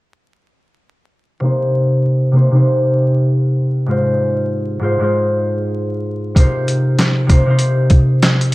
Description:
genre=hip hop, boom-bap hip-hop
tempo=97 BPM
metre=4/4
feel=swing 63% on 16ths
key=C minor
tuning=A4 = 442 Hz
part: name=concert harp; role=accompaniment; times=1.4-8.5 s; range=Ab2 to C5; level=-14 LUFS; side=equal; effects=high-pass filter, low-pass filter
part: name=boom bap sampler-style drum kit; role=drums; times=6.4-8.5 s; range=handclaps, hi-hat, kick drum, snare drum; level=-13 LUFS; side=equal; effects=vintage 12-bit sampler grit
room=light reverb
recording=vinyl crackle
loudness=-13 LUFS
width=side -20 dB against mid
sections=1.4-8.5 A section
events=filter sweep on harp 1.4-8.5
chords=1.4 Cm7; 3.9 Ab6; 6.4 Cm7

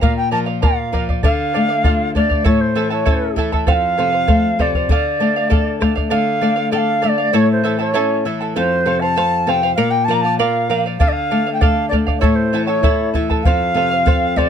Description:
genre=andean folk, Andean ensemble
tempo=98 BPM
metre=2/4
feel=straight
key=D minor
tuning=A4 = 440 Hz
part: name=bright reedy large quena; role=melody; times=0.0-14.5 s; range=C5 to Bb5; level=-18 LUFS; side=equal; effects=none
part: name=charango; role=accompaniment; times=0.0-14.5 s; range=E4 to A5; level=-22 LUFS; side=right 6 dB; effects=none
part: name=flamenco guitar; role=accompaniment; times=0.0-14.5 s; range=F2 to A4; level=-19 LUFS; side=left 4 dB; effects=none
part: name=bombo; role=percussion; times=0.0-6.1, 11.0-14.5 s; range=none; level=-17 LUFS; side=equal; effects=none
room=light reverb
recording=close, detailed microphones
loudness=-14 LUFS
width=side -8 dB against mid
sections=0.0-6.1 A section; 6.1-14.5 A section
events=none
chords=0.0 Bb; 1.2 Dm; 2.5 A; 3.7 F; 4.9 Dm; 7.3 A; 8.6 F; 9.8 Bb; 11.0 Dm; 12.2 A; 13.4 F

